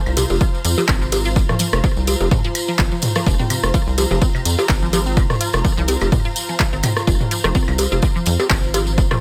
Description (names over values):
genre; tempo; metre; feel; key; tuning
minimal techno; 126 BPM; 4/4; swing 55% on 16ths; F minor; A4 = 435 Hz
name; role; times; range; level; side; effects
ethereal airy pad; texture; 0.0-9.2 s; F4 to Bb5; -30 LUFS; equal; ensemble chorus, built-in reverb, sidechain pumping
rubbery square bass; bass; 0.1-9.1 s; F1 to F2; -23 LUFS; equal; sidechain pumping
tambourine; percussion; 0.1-9.2 s; none; -30 LUFS; equal; none
techno drum kit; percussion; 0.1-9.2 s; claves, percussion blips, rim click, toms; -23 LUFS; equal; delay
resonant blip pluck; riff; 0.2-9.1 s; C3 to F4; -28 LUFS; equal; chorus, phaser, sidechain pumping, digital delay
punchy analog drum machine; drums; 0.2-8.8 s; handclaps, hi-hat; -25 LUFS; equal; overdrive
electronic kick drum; drums; 0.4-9.1 s; none; -20 LUFS; equal; overdrive
room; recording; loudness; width
digital ambience; none; -18 LUFS; mono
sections
0.0-9.2 A section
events
none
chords
0.0 F5